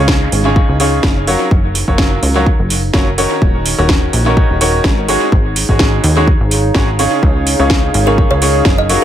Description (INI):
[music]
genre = piano house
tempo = 126 BPM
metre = 4/4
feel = swing 54% on 16ths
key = Db major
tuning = A4 = 440 Hz
[part]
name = clear upright piano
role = riff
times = 0.0-9.0 s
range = Db3 to Db5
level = -16 LUFS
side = equal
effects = sidechain pumping, dub echo
[part]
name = plucky analog bass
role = bass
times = 0.0-9.0 s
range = Eb1 to Eb2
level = -16 LUFS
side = equal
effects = tube saturation, sidechain pumping
[part]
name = warbly tape-like pad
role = texture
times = 0.0-9.0 s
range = Eb4 to F5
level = -22 LUFS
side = right 1 dB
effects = chorus, built-in reverb, sidechain pumping
[part]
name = electronic kick drum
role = drums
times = 0.1-8.8 s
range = none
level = -13 LUFS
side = equal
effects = none
[part]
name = house drum kit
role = drums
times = 0.1-9.0 s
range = hi-hat, snare drum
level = -18 LUFS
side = right 1 dB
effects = dub echo
[part]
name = kalimba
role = melody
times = 8.1-9.0 s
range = Bb4 to Eb5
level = -18 LUFS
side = right 1 dB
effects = dub echo
[sound]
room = light reverb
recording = echo-heavy mix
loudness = -10 LUFS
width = side -11 dB against mid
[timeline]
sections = 0.0-9.0 A section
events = none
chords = 0.0 Dbadd9; 1.3 Gbmaj7; 3.4 Ebm7; 5.1 Ab7sus4; 7.2 Dbadd9